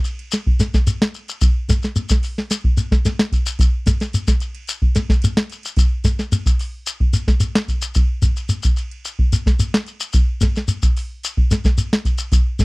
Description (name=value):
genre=afrobeat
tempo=110 BPM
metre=4/4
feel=straight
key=none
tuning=none
part: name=shekere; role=percussion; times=0.0-12.6 s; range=none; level=-20 LUFS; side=left 1 dB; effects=none
part: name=soft vintage rhythm box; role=drums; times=0.1-12.6 s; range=hi-hat, kick drum, ride cymbal, snare drum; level=-16 LUFS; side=equal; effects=none
room=little or no reverb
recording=dry, close 1970s-style studio recording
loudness=-16 LUFS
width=side -25 dB against mid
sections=0.0-12.6 A section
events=none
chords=none